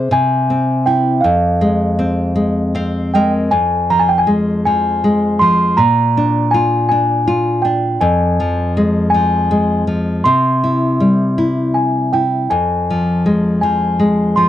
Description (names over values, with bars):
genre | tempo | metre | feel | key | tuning
children's music, lullaby | 53 BPM (dotted quarters) | 6/8 | straight | F minor | A4 = 440 Hz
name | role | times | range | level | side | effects
nylon-string guitar | accompaniment | 0.0-14.5 s | F2 to F5 | -15 LUFS | left 1 dB | none
celesta | melody | 0.1-14.5 s | F5 to C6 | -16 LUFS | right 1 dB | none
room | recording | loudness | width
little or no reverb | dry, close 1970s-style studio recording | -12 LUFS | side -12 dB against mid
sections
0.0-3.5 A section; 3.5-14.5 A section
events
nylon-string guitar fill 2.4-3.5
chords
0.1 C; 1.2 Fm; 5.8 Bb; 8.0 Fm; 10.2 C; 12.5 Fm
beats
0.12 | 1.24 2.37 | 3.51 4.65 | 5.78 6.90 | 8.01 9.12 | 10.24 11.37 | 12.50 13.63